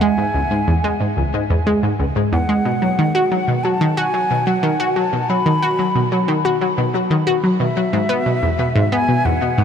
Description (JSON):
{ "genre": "ambient, sequencer-driven space music", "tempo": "91 BPM", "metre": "4/4", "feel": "straight", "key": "unclear", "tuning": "A4 = 440 Hz", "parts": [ { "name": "mellow hollow silver concert flute", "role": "melody", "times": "0.0-9.6 s", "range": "E5 to B5", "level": "-22 LUFS", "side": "left 1 dB", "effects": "ping-pong delay" }, { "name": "analog pluck", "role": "riff", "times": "0.0-9.6 s", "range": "C#2 to F#4", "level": "-16 LUFS", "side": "equal", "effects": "chorus, ping-pong delay" } ], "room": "wet huge ambient reverb, RT60 8.2 s", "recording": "cassette tape", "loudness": "-15 LUFS", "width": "side -8 dB against mid", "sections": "0.0-9.6 A section", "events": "none", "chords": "0.0 N.C.; 7.9 E" }